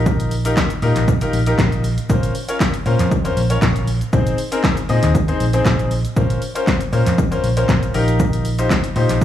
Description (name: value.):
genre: dance-pop.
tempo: 118 BPM.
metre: 4/4.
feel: straight.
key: Bb dorian.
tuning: A4 = 440 Hz.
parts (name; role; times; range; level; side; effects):
clear baby grand piano; accompaniment; 0.0-9.2 s; C4 to Eb5; -21 LUFS; left 3 dB; sidechain pumping.
vintage muted fingered electric bass; bass; 0.0-9.2 s; Bb1 to Bb2; -18 LUFS; equal; sidechain pumping.
punchy analog drum machine; drums; 0.1-9.2 s; handclaps, hi-hat, kick drum, shaker, snare drum; -19 LUFS; equal; none.
room: digital ambience.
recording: studio reverb.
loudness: -15 LUFS.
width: side -11 dB against mid.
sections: 0.0-9.2 A section.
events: none.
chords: 0.0 Ebadd9/Bb; 2.1 Bbmadd9; 4.1 Ab/Bb; 6.2 Bbmadd9; 7.9 Ebadd9/Bb.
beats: | 0.06 0.57 1.08 1.59 | 2.10 2.60 3.11 3.62 | 4.13 4.64 5.15 5.66 | 6.16 6.67 7.18 7.69 | 8.20 8.71 9.21.